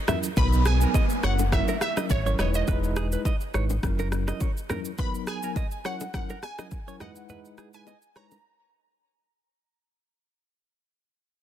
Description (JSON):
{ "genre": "afrobeats", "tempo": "104 BPM", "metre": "4/4", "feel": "swing 55% on 16ths", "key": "unclear", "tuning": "A4 = 440 Hz", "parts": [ { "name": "tine electric piano", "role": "accompaniment", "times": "0.1-8.4 s", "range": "F#3 to B4", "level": "-33 LUFS", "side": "equal", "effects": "medium stereo tremolo" }, { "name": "direct-recorded clean electric guitar", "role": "riff", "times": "0.1-8.3 s", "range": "G#4 to E5", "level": "-36 LUFS", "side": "right 8 dB", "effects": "tape echo" }, { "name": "afro-pop drum kit", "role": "drums", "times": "0.1-8.4 s", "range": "kick drum, rim click, shaker", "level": "-28 LUFS", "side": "equal", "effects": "soft clipping on snare" }, { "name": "congas and bongos", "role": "percussion", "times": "0.1-8.4 s", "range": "none", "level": "-36 LUFS", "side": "left 4 dB", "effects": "none" }, { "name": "glassy wavetable pluck", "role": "melody", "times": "0.4-9.0 s", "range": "C#5 to B5", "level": "-32 LUFS", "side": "right 2 dB", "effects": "chorus, tape echo" }, { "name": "sub bass with octave", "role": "bass", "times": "0.4-4.3 s", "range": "E1 to B1", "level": "-25 LUFS", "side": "equal", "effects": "none" }, { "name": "downlifter", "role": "sound effects", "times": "0.4-5.0 s", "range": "none", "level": "-34 LUFS", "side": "equal", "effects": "none" } ], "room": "little or no reverb", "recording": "dense, heavily limited modern master", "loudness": "-23 LUFS", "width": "side -11 dB against mid", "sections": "0.4-9.6 A section", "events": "fade-out 0.4-9.6; break 8.4-9.6", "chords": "0.4 Bmaj7; 1.2 F#7; 2.4 Emaj7; 3.8 F#7; 5.0 Bmaj7; 5.9 F#7; 7.0 Emaj7; 8.4 N.C." }